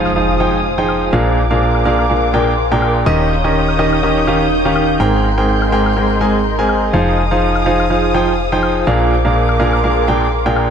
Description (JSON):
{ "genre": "piano house", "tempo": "124 BPM", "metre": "4/4", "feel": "swing 57% on 16ths", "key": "unclear", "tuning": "A4 = 440 Hz", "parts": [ { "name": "muted symphonic violin section", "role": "sustained chords", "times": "0.0-10.7 s", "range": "Ab4 to G6", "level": "-21 LUFS", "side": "left 1 dB", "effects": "low-pass filter" }, { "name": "clear concert grand piano", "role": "riff", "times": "0.0-10.7 s", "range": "Ab2 to Ab5", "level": "-15 LUFS", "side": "equal", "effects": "tape echo" }, { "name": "solid FM bass", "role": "bass", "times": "0.0-10.7 s", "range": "Eb1 to Bb1", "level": "-19 LUFS", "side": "equal", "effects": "tube saturation" }, { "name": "impact", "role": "sound effects", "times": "0.0-1.1 s", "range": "none", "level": "-29 LUFS", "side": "equal", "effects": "none" }, { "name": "ethereal airy pad", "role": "texture", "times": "0.0-10.7 s", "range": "Eb4 to C6", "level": "-20 LUFS", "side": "right 1 dB", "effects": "ensemble chorus, built-in reverb" }, { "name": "woodblock", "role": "drums", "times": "0.1-10.7 s", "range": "none", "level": "-30 LUFS", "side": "left 4 dB", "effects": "none" } ], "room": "light reverb", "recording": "echo-heavy mix", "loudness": "-12 LUFS", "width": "side -7 dB against mid", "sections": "0.0-10.7 A section", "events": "impact 0.0-1.1", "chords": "0.0 Fm7; 1.1 Bb7; 3.1 Eb7; 5.0 Abmaj9; 6.9 Fm7; 8.9 Bb7" }